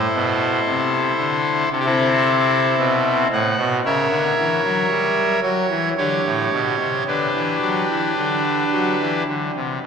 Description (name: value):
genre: classical, chorale-style piece for pipe organ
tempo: 54-57 BPM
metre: 4/4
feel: rubato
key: G major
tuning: A4 = 441 Hz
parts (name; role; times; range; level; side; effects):
- pipe organ, trumpet; solo; 0.0-9.9 s; A2 to F#5; -17 LUFS; equal; none
room: wet church reverb, RT60 3.5 s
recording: dark, warm production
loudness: -17 LUFS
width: side -6 dB against mid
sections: 0.0-9.9 A section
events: none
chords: 0.0 Am; 1.7 Am/C; 3.8 C#dim7; 6.0 G